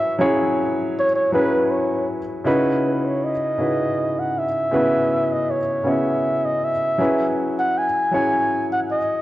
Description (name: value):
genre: R&B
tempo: 53 BPM (dotted quarters)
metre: 6/8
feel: straight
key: C# minor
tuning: A4 = 438 Hz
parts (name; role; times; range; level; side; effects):
- mellow flugelhorn; melody; 0.0-9.2 s; B4 to G#5; -21 LUFS; equal; none
- warm grand piano; accompaniment; 0.0-9.2 s; C#3 to C#5; -21 LUFS; equal; none
room: moderate scoring stage reverb, RT60 1.9 s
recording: none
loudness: -18 LUFS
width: side -15 dB against mid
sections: 0.0-2.5 A section; 2.5-9.2 B section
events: flugelhorn solo 0.0-2.5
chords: 0.0 F#9sus4; 2.5 C#m11; 7.0 F#9sus4